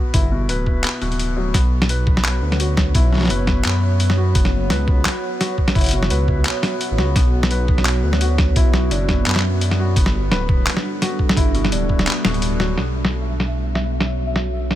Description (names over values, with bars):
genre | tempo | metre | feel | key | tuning
half-time drum and bass | 171 BPM | 4/4 | swing 56% on 16ths, half-time | B minor | A4 = 440 Hz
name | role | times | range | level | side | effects
felt-muted upright piano | arpeggios | 0.0-12.8 s | B2 to B4 | -26 LUFS | left 3 dB | digital delay
dark detuned saw bass | bass | 0.1-14.8 s | D1 to F#2 | -20 LUFS | equal | tube saturation
boom bap sampler-style drum kit | drums | 0.1-14.8 s | handclaps, hi-hat, snare drum | -22 LUFS | equal | low-pass filter on hats, low-pass filter on snare
electronic kick drum | drums | 0.1-12.0 s | none | -18 LUFS | equal | none
deep dark ambient pad | sustained chords | 2.1-14.8 s | G3 to F#5 | -26 LUFS | right 2 dB | chorus, built-in reverb, sidechain pumping
pulsing gated texture | texture | 13.0-14.8 s | E5 | -31 LUFS | left 3 dB | chorus, built-in reverb
room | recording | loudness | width
little or no reverb | none | -16 LUFS | side -13 dB against mid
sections
0.0-12.8 A section; 12.8-14.8 B section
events
none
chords
0.0 G; 1.5 Bm; 4.4 F#5; 7.2 Bm; 10.0 G; 12.8 B5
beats
| 0.14 0.49 0.84 1.20 | 1.55 1.90 2.25 2.60 | 2.95 3.30 3.65 4.00 | 4.35 4.70 5.05 5.41 | 5.76 6.11 6.46 6.81 | 7.16 7.51 7.86 8.21 | 8.56 8.91 9.27 9.62 | 9.97 10.32 10.67 11.02 | 11.37 11.72 12.07 12.42 | 12.77 13.12 13.48 13.83 | 14.18 14.53